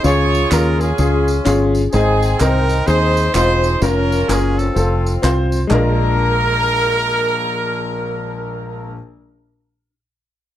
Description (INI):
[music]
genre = uptempo gospel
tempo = 127 BPM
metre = 4/4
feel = swing 63% on 8ths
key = Bb minor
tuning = A4 = 442 Hz
[part]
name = clear horn section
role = melody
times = 0.0-8.9 s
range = C4 to Db5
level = -19 LUFS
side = right 1 dB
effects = none
[part]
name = clear concert grand piano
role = accompaniment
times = 0.0-9.0 s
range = Bb1 to C5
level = -19 LUFS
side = left 2 dB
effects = none
[part]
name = fingered electric bass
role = bass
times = 0.0-8.9 s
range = E1 to Eb2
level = -18 LUFS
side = equal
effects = none
[part]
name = tambourine and handclaps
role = percussion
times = 0.0-6.0 s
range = none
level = -28 LUFS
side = right 3 dB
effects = none
[sound]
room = light reverb, studio ambience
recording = dark, warm production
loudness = -14 LUFS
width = side -12 dB against mid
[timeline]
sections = 0.0-5.7 A section; 5.7-9.5 B section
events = none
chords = 0.0 Db; 1.9 Ab; 3.8 Bbm/F; 4.8 F; 5.7 Bb7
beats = | 0.05 0.52 0.99 1.46 | 1.93 2.40 2.88 3.35 | 3.82 4.29 4.76 5.24 | 5.71 6.18 6.66 7.13 | 7.60 8.08 8.55